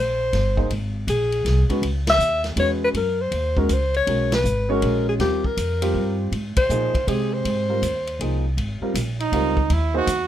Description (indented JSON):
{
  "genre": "jazz, small-group swing and bop",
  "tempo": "160 BPM",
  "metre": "3/4",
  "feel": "swing 66% on 8ths",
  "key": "Ab major",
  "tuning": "A4 = 440 Hz",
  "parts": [
    { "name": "clear alto saxophone", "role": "melody", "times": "0.0-8.5 s", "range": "G4 to Fb5", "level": "-22 LUFS", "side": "left 2 dB", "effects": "none" },
    { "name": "upright bass", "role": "bass", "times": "0.0-10.3 s", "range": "G1 to C3", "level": "-24 LUFS", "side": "equal", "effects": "none" },
    { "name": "vintage drum kit", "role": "drums", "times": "0.3-10.2 s", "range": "hi-hat, kick drum, ride cymbal, snare drum", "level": "-29 LUFS", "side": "equal", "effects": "none" },
    { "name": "warm baby grand piano", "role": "accompaniment", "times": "0.6-10.1 s", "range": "F3 to C#5", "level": "-25 LUFS", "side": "right 1 dB", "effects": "none" },
    { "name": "clear trumpet", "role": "second line", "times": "9.2-10.3 s", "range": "Eb4 to Gb4", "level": "-22 LUFS", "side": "right 6 dB", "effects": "none" }
  ],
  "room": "little or no reverb",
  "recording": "minimal, uncompressed stereo recording",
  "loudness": "-19 LUFS",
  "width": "side -11 dB against mid",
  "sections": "0.0-8.6 A section; 8.6-10.3 B section",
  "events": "band accent 2.0, 4.3, 6.5; trumpet solo 8.6-10.3",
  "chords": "0.0 Abmaj9; 0.7 Ab; 1.8 Dbm11; 3.0 Gb; 4.1 Bsus2; 5.2 Ebadd9; 6.3 Abmaj9; 9.7 Ab7b13"
}